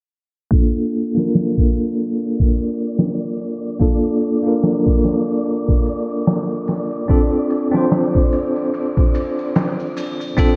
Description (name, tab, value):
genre	trip hop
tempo	73 BPM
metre	4/4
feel	swing 57% on 16ths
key	unclear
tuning	A4 = 438 Hz
part	bell-like tine electric piano	accompaniment	0.5-10.6 s	Bb3 to C5	-21 LUFS	equal	tremolo, low-pass filter, tape echo
part	trip hop sampler-style drum kit	drums	0.5-10.6 s	kick drum, ride cymbal, snare drum	-20 LUFS	equal	low-pass filter on kick, low-pass filter on cymbals, low-pass filter on snare, low-pass filter on room, gated reverb
part	maracas and triangle	percussion	0.5-10.6 s	none	-43 LUFS	equal	none
part	wind-like tuned noise texture	texture	2.1-10.6 s	D4 to D5	-33 LUFS	equal	built-in reverb
room	moderate lush hall reverb, RT60 3.0 s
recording	bright 1980s-style digital production, low-pass filter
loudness	-18 LUFS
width	mono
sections	0.5-10.6 A section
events	filter sweep on tine electric piano 0.5-10.6; filter sweep 0.5-10.6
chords	0.5 Bbmaj7; 7.1 Dm7